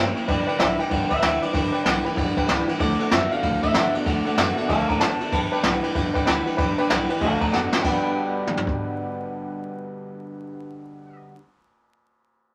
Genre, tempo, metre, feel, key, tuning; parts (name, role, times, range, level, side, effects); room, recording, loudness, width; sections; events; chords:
rockabilly; 190 BPM; 4/4; swing 63% on 8ths; G major; A4 = 441 Hz
electric guitar through a small old amp; melody; 0.0-11.2 s; A4 to Bb5; -29 LUFS; equal
honky-tonk upright piano; accompaniment; 0.0-11.2 s; A4 to B5; -32 LUFS; equal
picked swing-style acoustic guitar; accompaniment; 0.0-11.4 s; G2 to G4; -33 LUFS; equal
electric guitar through a small old amp; riff; 0.0-11.4 s; G2 to D4; -30 LUFS; equal
upright bass; bass; 0.0-11.2 s; F#1 to A2; -35 LUFS; equal
jazz brush drum kit; drums; 0.2-8.7 s; crash cymbal, kick drum, ride cymbal, snare drum, toms; -26 LUFS; equal
moderate club reverb, RT60 0.5 s; vinyl crackle; -22 LUFS; mono
0.0-7.8 A section; 7.8-10.4 B section
honky-tonk piano fill 2.2-2.8; drum fill 7.5-7.8
0.3 G; 2.8 D; 5.3 G; 7.2 D; 7.8 G